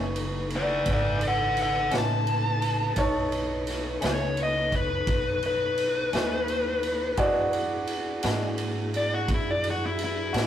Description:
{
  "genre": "slow blues",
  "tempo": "57 BPM (dotted quarters)",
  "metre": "12/8",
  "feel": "straight",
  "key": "B mixolydian",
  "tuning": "A4 = 440 Hz",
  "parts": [
    { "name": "clear upright piano", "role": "accompaniment", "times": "0.0-10.5 s", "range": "D#4 to C#6", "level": "-31 LUFS", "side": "right 2 dB", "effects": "none" },
    { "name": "electric guitar through a small old amp", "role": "accompaniment", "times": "0.0-10.5 s", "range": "B2 to F#4", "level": "-32 LUFS", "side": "equal", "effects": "tremolo" },
    { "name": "mellow tonewheel organ", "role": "sustained chords", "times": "0.0-10.5 s", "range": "C#3 to C#5", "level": "-33 LUFS", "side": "equal", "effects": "slow rotary speaker" },
    { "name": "upright bass", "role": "bass", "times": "0.0-10.5 s", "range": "F#1 to A2", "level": "-32 LUFS", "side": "right 1 dB", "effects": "none" },
    { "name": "raw garage drum kit", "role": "drums", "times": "0.2-10.5 s", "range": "kick drum, ride cymbal, snare drum", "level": "-31 LUFS", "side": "right 1 dB", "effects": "none" },
    { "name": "dark smooth lead guitar", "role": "melody", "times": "0.6-10.5 s", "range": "E4 to A5", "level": "-27 LUFS", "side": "left 2 dB", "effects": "overdrive" }
  ],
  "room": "moderate booth ambience, RT60 0.2 s",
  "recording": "rough rehearsal-room recording, warm saturation",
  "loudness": "-24 LUFS",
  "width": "side -10 dB against mid",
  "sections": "0.0-10.5 A section",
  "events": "lead electric guitar solo 0.0-10.5",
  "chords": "0.0 B9; 7.2 E9"
}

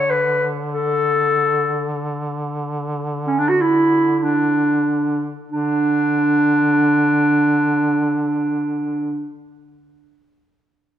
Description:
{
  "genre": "Turkish makam ensemble",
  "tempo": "free time",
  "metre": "none",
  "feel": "none",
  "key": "unclear",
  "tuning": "A4 = 440 Hz",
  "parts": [
    { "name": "mellow clarinet", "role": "melody", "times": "0.0-9.3 s", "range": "C#4 to C#5", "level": "-16 LUFS", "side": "right 1 dB", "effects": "none" },
    { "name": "warm duduk", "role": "drone", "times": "0.0-9.3 s", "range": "D3", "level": "-25 LUFS", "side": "equal", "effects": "none" }
  ],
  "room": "moderate scoring stage reverb, RT60 2.0 s",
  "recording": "none",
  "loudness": "-16 LUFS",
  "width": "side -10 dB against mid",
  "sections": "0.0-5.5 A section; 5.5-8.6 B section",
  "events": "none",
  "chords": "none"
}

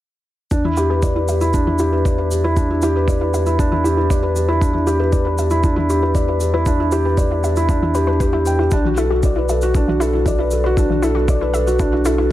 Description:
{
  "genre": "piano and strings electronica",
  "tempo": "117 BPM",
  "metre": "4/4",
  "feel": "straight",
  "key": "E minor",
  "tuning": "A4 = 440 Hz",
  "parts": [
    { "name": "analog pluck", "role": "arpeggios", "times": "0.5-12.3 s", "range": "E3 to E5", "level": "-26 LUFS", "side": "left 1 dB", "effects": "chorus, sidechain pumping, tape echo" },
    { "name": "felt-muted upright piano", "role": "riff", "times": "0.5-12.3 s", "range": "D4 to G5", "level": "-18 LUFS", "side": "equal", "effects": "tape echo" },
    { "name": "warm sub bass", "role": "bass", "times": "0.5-12.3 s", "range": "B1 to E2", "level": "-20 LUFS", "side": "equal", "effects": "tube saturation, sidechain pumping" },
    { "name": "electronic kick drum", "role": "drums", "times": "0.5-11.9 s", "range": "none", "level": "-18 LUFS", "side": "equal", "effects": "none" },
    { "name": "shaker", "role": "drums", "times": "0.5-12.2 s", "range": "none", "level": "-34 LUFS", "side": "equal", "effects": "none" }
  ],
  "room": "light reverb, small room ambience",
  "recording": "none",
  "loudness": "-15 LUFS",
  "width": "side -14 dB against mid",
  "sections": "0.5-12.3 A section",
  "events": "filter sweep on synth arpeggio sound 0.5-12.3",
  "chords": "0.5 Em7; 8.7 Bm7"
}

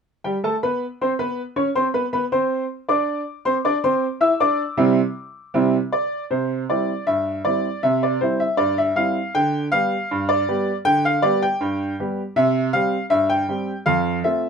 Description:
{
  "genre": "ragtime piano",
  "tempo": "79 BPM",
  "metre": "2/4",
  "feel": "straight",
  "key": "C major",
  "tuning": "A4 = 439 Hz",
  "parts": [
    { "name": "clear upright piano", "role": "solo", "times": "0.2-14.5 s", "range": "F2 to E6", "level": "-18 LUFS", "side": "equal", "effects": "none" }
  ],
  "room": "light reverb",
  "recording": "minimal, uncompressed stereo recording",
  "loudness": "-19 LUFS",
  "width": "side -6 dB against mid",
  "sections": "0.2-6.3 A section; 6.3-14.5 B section",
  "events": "none",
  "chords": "0.2 C; 9.3 G; 12.4 C5; 13.9 F"
}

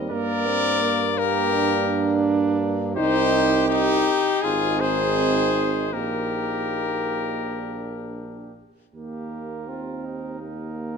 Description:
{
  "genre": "classical, brass quintet",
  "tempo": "82 BPM",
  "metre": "4/4",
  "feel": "rubato",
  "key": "Eb major",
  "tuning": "A4 = 441 Hz",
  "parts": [
    { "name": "warm French horn", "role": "accompaniment", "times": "0.0-11.0 s", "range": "G3 to G4", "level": "-31 LUFS", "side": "left 6 dB", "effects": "none" },
    { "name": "warm euphonium", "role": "accompaniment", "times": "0.0-11.0 s", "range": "Bb3 to Eb4", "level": "-28 LUFS", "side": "right 4 dB", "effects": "none" },
    { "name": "warm tuba", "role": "bass", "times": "0.0-11.0 s", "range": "Ab1 to G2", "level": "-28 LUFS", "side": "right 6 dB", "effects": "none" },
    { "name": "warm cornet", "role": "melody", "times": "0.1-11.0 s", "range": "Eb4 to D5", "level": "-25 LUFS", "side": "left 10 dB", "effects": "none" },
    { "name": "warm trumpet", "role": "second line", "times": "0.1-11.0 s", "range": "Eb4 to Bb4", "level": "-28 LUFS", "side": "right 8 dB", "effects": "none" }
  ],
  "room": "wet recital hall reverb, RT60 1.8 s",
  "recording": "none",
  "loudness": "-20 LUFS",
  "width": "side -6 dB against mid",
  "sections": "0.0-8.9 A section; 8.9-11.0 A section",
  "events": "none",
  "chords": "0.1 Gm; 3.0 Cm; 4.4 Ab6; 5.9 Eb/Bb; 7.4 Bb; 8.9 Eb"
}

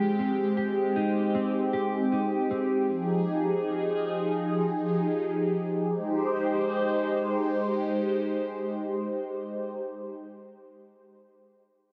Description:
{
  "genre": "dream pop",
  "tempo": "78 BPM",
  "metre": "4/4",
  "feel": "straight",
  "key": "Ab major",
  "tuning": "A4 = 439 Hz",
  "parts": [
    { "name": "phased analog pad", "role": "sustained chords", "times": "0.0-9.8 s", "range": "F3 to C5", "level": "-29 LUFS", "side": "equal", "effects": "phaser, chorus" },
    { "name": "mellow electric guitar", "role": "arpeggios", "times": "0.0-3.5 s", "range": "Ab3 to G4", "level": "-31 LUFS", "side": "equal", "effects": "subtle chorus, digital delay" }
  ],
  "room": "moderate huge ambient reverb, RT60 4.9 s",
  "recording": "heavily compressed radio sound",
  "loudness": "-28 LUFS",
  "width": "mono",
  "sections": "0.0-6.0 A section; 6.0-9.0 B section",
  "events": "none",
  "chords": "0.0 Abmaj7; 2.9 Fm9; 6.0 Abmaj7"
}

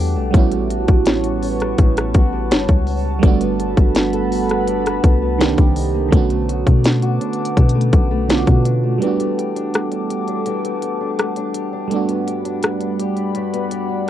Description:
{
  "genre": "contemporary R&B",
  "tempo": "83 BPM",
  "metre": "4/4",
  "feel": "straight",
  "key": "E minor from 9.0 s",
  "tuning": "A4 = 440 Hz",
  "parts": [
    { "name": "FM electric piano", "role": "accompaniment", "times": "0.0-14.1 s", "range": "D3 to G4", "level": "-21 LUFS", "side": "right 8 dB", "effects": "chorus, phaser, cassette tape" },
    { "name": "deep dark ambient pad", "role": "sustained chords", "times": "0.0-14.1 s", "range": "G3 to D6", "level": "-26 LUFS", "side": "left 1 dB", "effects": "chorus, built-in reverb, sidechain pumping, cassette tape" },
    { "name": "fingerpicked old ladder-braced acoustic guitar", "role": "arpeggios", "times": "0.0-14.1 s", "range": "G2 to A4", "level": "-25 LUFS", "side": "left 10 dB", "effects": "cassette tape, analog delay" },
    { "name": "warm 808-style bass", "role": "bass", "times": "0.0-9.0 s", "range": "G1 to B2", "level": "-20 LUFS", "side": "left 1 dB", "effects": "none" },
    { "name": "trap drum kit", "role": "drums", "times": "0.3-13.9 s", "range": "hi-hat, kick drum, rim click, snare drum", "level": "-15 LUFS", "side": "left 1 dB", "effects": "cassette tape" }
  ],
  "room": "light reverb",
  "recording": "home recording on cassette",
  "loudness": "-15 LUFS",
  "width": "side -11 dB against mid",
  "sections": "0.0-9.0 A section; 9.0-14.1 B section",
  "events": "break 9.0-14.1",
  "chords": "0.3 A13; 3.2 Gmaj9; 5.4 Cm7; 6.1 Bm7; 9.0 Em11; 11.9 Gmaj7"
}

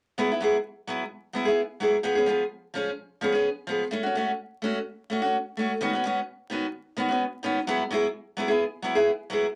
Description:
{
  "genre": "highlife",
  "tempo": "128 BPM",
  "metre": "4/4",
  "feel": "straight",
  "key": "E major",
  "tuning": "A4 = 445 Hz",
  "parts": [
    { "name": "picked steel-string acoustic guitar", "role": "solo", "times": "0.2-9.5 s", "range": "D#3 to G#4", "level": "-26 LUFS", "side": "equal", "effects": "none" }
  ],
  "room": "wet club reverb, RT60 0.6 s",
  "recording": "vinyl crackle",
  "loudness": "-27 LUFS",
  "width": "mono",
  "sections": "0.2-7.7 A section; 7.7-9.6 B section",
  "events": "none",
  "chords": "0.2 Eadd9; 2.1 C#7; 3.9 F#m; 5.8 Badd9; 7.7 Eadd9"
}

